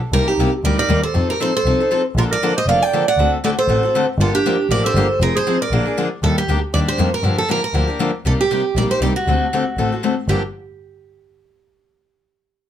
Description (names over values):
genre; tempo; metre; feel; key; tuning
acoustic string swing (jazz manouche); 236 BPM; 4/4; swing 55% on 8ths; G minor; A4 = 439 Hz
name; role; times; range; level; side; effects
picked steel-string acoustic guitar; melody; 0.1-10.4 s; F#4 to G5; -20 LUFS; right 2 dB; none
breathy clarinet; second line; 0.1-6.1 s; D4 to D5; -22 LUFS; right 5 dB; none
picked steel-string acoustic guitar; accompaniment; 0.1-10.4 s; G2 to A4; -21 LUFS; left 3 dB; none
muted double bass; bass; 0.1-10.3 s; F1 to G2; -19 LUFS; equal; none
room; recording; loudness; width
moderate studio reverb, RT60 0.5 s; none; -15 LUFS; side -10 dB against mid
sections
0.0-6.2 A section; 6.2-10.3 B section; 10.3-11.3 C section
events
none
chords
0.1 Cm9; 1.1 F7; 2.2 Bbmaj7; 3.2 D7; 4.2 Gm11; 5.2 Fm7; 5.7 Bb7; 6.2 Ebmaj7; 7.2 Gm7; 8.3 Cm7; 9.3 D7; 10.3 Gm7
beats
| 0.12 0.38 0.63 0.89 | 1.14 1.40 1.65 1.91 | 2.16 2.42 2.67 2.92 | 3.18 3.43 3.69 3.94 | 4.19 4.45 4.70 4.95 | 5.21 5.46 5.71 5.97 | 6.22 6.48 6.73 6.98 | 7.24 7.49 7.75 8.00 | 8.25 8.51 8.76 9.02 | 9.27 9.52 9.78 10.03 | 10.29